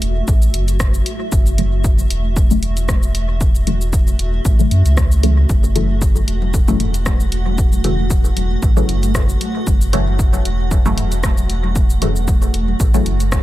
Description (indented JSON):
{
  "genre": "dub techno",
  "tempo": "115 BPM",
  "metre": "4/4",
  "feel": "swing 55% on 16ths",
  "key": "F# minor",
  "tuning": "A4 = 439 Hz",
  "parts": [
    { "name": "granular cloud pad", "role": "sustained chords", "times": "0.0-13.4 s", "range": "A3 to F#5", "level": "-26 LUFS", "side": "right 2 dB", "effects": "built-in reverb, sidechain pumping" },
    { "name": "warm sub bass", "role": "bass", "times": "0.0-13.4 s", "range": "E1 to F#2", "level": "-17 LUFS", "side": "equal", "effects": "sidechain pumping" },
    { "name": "punchy analog drum machine", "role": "drums", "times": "0.0-13.4 s", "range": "cabasa, hi-hat, rim click", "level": "-27 LUFS", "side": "left 1 dB", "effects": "dub echo" },
    { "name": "electronic kick drum", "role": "drums", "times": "0.3-13.4 s", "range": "none", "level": "-16 LUFS", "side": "equal", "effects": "none" },
    { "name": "filtered dub chord stab", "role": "stabs", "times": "1.6-13.1 s", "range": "C#3 to A3", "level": "-24 LUFS", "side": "left 2 dB", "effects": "phaser, sidechain pumping, dub echo" },
    { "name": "electronic congas and toms", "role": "percussion", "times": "5.5-13.4 s", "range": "none", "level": "-29 LUFS", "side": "left 3 dB", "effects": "none" }
  ],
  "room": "little or no reverb",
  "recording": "none",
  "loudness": "-13 LUFS",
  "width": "side -15 dB against mid",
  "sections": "0.0-13.4 A section",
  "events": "none",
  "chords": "0.0 F#m7",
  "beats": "0.28 0.80 | 1.32 1.84 2.37 2.89 | 3.41 3.93 4.45 4.97 | 5.50 6.02 6.54 7.06 | 7.58 8.11 8.63 9.15 | 9.67 10.19 10.71 11.24 | 11.76 12.28 12.80 13.32"
}